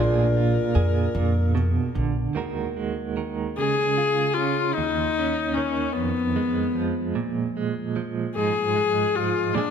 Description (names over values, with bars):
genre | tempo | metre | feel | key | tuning
acoustic folk-pop ballad | 50 BPM (dotted quarters) | 6/8 | straight | Eb minor | A4 = 442 Hz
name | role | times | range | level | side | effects
felt-muted upright piano | melody | 0.0-1.5 s | D4 to D5 | -26 LUFS | left 1 dB | none
clear viola | second line | 0.0-9.7 s | Cb4 to Bb4 | -24 LUFS | left 5 dB | none
direct-recorded clean electric guitar | accompaniment | 0.0-9.7 s | Eb2 to Bb4 | -26 LUFS | right 6 dB | tremolo
upright bass | bass | 0.0-2.3 s | Bb1 to F2 | -22 LUFS | right 1 dB | none
room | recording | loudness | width
moderate concert hall reverb, RT60 2.3 s | none | -21 LUFS | side -7 dB against mid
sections
0.0-2.4 A section; 2.4-9.7 B section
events
viola solo 2.4-9.7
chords
0.0 Bb7; 2.4 Ebm; 3.6 Db; 4.8 Dbsus2/Eb; 6.0 Fm7b5; 7.1 Bb5; 8.3 Fm7/Ab